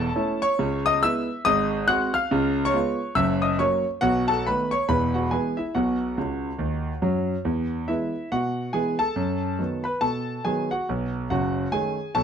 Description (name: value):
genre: jazz, stride piano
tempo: 140 BPM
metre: 4/4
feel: swing 61% on 8ths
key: E major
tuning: A4 = 439 Hz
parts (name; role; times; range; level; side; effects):
- clear concert grand piano; solo; 0.0-12.2 s; E1 to F#6; -22 LUFS; equal; none
room: moderate studio reverb, RT60 0.7 s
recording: none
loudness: -22 LUFS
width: side -8 dB against mid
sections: 0.0-7.4 A section; 7.4-12.2 B section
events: grand piano fill 6.2-7.4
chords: 0.0 A; 0.6 C#m7; 1.4 G#7; 2.3 C#7; 3.2 F#7; 4.0 B7; 4.9 E; 5.7 B; 7.4 E; 9.2 B7/F#; 10.9 B9